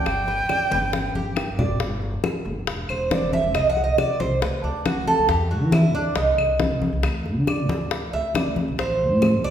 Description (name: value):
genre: latin, Cuban son and guajira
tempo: 137 BPM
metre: 4/4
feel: straight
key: G major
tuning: A4 = 440 Hz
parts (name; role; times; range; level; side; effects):
- silver concert flute; melody; 0.0-1.6 s; G5; -24 LUFS; right 1 dB; none
- Cuban tres; arpeggios; 0.0-9.5 s; D4 to F#5; -24 LUFS; right 3 dB; none
- upright bass; bass; 0.0-9.5 s; E1 to E3; -25 LUFS; equal; none
- bongos; percussion; 0.1-9.4 s; none; -30 LUFS; left 5 dB; none
- claves; percussion; 0.1-9.4 s; none; -35 LUFS; left 4 dB; none
- congas; percussion; 0.1-9.4 s; none; -28 LUFS; left 2 dB; none
room: wet recital hall reverb, RT60 1.6 s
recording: recorded in a church or concert hall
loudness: -20 LUFS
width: side -9 dB against mid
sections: 0.0-1.8 A section; 1.8-9.5 B section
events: drum fill 0.9-1.8; Cuban tres solo 1.8-9.5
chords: 0.1 G; 1.8 N.C.; 2.7 Cadd9/E; 3.5 Cmadd9; 4.4 D6; 5.3 Dadd9; 6.2 Cm; 7.0 Bmadd11 (rootless); 8.8 Am